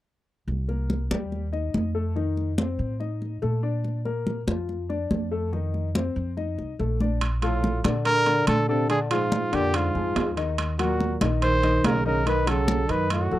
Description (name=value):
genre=Afro-Cuban jazz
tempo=142 BPM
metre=4/4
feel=straight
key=Bb major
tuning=A4 = 440 Hz
part: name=upright bass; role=bass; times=0.5-13.4 s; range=Bb1 to Bb2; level=-27 LUFS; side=equal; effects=none
part: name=congas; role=percussion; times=0.5-13.4 s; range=none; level=-29 LUFS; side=equal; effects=none
part: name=warm grand piano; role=accompaniment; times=0.7-13.4 s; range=D3 to Eb5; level=-30 LUFS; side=left 6 dB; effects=none
part: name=timbales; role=percussion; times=7.2-13.3 s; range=none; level=-32 LUFS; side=right 4 dB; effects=none
part: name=breathy trumpet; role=melody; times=7.4-13.4 s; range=F4 to C5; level=-25 LUFS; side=equal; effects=none
part: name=breathy trombone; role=second line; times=7.4-13.4 s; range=Ab2 to D#3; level=-29 LUFS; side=right 6 dB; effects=none
room=light reverb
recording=dry, close 1970s-style studio recording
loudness=-22 LUFS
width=side -14 dB against mid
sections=0.5-7.2 A section; 7.2-13.4 B section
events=none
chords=0.5 Cm7; 2.2 F7; 3.8 Bb; 5.5 F7; 7.2 Bbmaj7; 8.9 Bb7; 10.6 Ebm; 12.3 B9